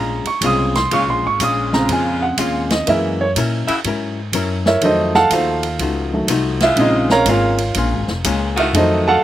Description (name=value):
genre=jazz, big band swing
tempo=123 BPM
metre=4/4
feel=swing 66% on 8ths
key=Bb minor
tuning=A4 = 440 Hz
part: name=archtop guitar, miked and amplified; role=accompaniment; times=0.0-9.1 s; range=Bb2 to Bb4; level=-23 LUFS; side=left 6 dB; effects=slapback echo
part: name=warm baby grand piano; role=accompaniment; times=0.0-9.2 s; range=Db3 to Eb6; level=-16 LUFS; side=right 2 dB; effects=slapback echo
part: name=upright bass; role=bass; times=0.0-9.2 s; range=F1 to Bb2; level=-22 LUFS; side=left 1 dB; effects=none
part: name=swinging big-band drum kit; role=drums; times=0.3-8.9 s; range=hi-hat, ride cymbal, snare drum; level=-24 LUFS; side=right 2 dB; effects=none
part: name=edgy saxophone section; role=sustained chords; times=0.9-9.2 s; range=Db3 to Gb4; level=-22 LUFS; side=left 1 dB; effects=none
room=little or no reverb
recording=recorded outdoors, with no room sound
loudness=-14 LUFS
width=side -12 dB against mid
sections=0.0-9.2 A section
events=grand piano solo 0.0-9.2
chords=0.0 Bbm7; 2.9 Gb7; 4.8 F7b9; 6.8 Bbm7; 8.7 F7b9